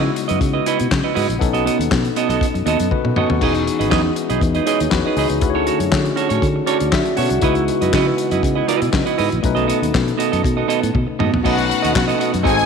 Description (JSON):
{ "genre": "disco", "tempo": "120 BPM", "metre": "4/4", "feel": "straight", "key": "unclear", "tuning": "A4 = 440 Hz", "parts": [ { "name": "barky tine electric piano", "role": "accompaniment", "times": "0.0-12.7 s", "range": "B2 to F#5", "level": "-22 LUFS", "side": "left 10 dB", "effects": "overdrive" }, { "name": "clean electric guitar", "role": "accompaniment", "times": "0.0-12.6 s", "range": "B3 to D#5", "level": "-20 LUFS", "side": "right 11 dB", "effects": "none" }, { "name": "fingered electric bass", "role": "bass", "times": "0.0-12.6 s", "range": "E1 to D3", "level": "-22 LUFS", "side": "equal", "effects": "none" }, { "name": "warm soul drum kit", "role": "drums", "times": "0.2-12.7 s", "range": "crash cymbal, handclaps, hi-hat, kick drum, snare drum, toms", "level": "-22 LUFS", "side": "left 2 dB", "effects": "none" }, { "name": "dark French horn section", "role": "sustained chords", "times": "3.4-11.4 s", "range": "D3 to D#5", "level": "-24 LUFS", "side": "right 2 dB", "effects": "none" }, { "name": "rich studio string section", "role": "second line", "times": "11.4-12.7 s", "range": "F#4 to G#5", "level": "-19 LUFS", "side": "left 3 dB", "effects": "none" } ], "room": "moderate echo chamber reverb, RT60 1.8 s, studio reverb", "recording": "1960s-style stereo with parts hard left and right", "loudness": "-15 LUFS", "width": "side -6 dB against mid", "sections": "0.0-11.4 A section; 11.4-12.7 B section", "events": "drum fill 2.9-3.4, 10.9-11.4; tine electric piano fill 6.4-7.4", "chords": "0.0 C#m11; 1.4 B7; 3.4 Emaj7; 5.4 Dmaj7; 7.4 C#m11; 9.4 B7" }